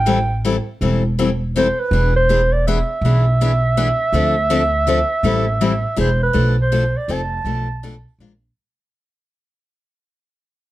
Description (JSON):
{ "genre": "acoustic string swing (jazz manouche)", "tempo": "162 BPM", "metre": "3/4", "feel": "swing 61% on 8ths", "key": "A minor", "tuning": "A4 = 438 Hz", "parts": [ { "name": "mellow clarinet", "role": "melody", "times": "0.0-8.2 s", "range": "B4 to A5", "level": "-19 LUFS", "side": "right 2 dB", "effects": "plate reverb" }, { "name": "upright bass", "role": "bass", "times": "0.0-8.5 s", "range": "E1 to D2", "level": "-18 LUFS", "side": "right 1 dB", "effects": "none" }, { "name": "picked steel-string acoustic guitar", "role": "accompaniment", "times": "0.1-8.3 s", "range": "B2 to Bb4", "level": "-21 LUFS", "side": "left 4 dB", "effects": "none" } ], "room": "light reverb", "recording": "dark, warm production", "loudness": "-15 LUFS", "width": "side -15 dB against mid", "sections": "0.0-6.3 A section; 6.3-8.6 B section", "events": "fade-out 6.3-8.6", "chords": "0.0 Am7; 1.9 E7; 4.1 Dm7; 5.2 Am7; 6.0 E7; 6.3 Bm7b5; 7.1 F7; 7.5 Bm7b5; 8.2 Bb7", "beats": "0.07 0.44 | 0.81 1.18 1.55 | 1.92 2.28 2.65 | 3.02 3.39 3.76 | 4.13 4.50 4.87 | 5.24 5.61 5.98 | 6.35 6.72 7.09 | 7.46 7.83 8.20" }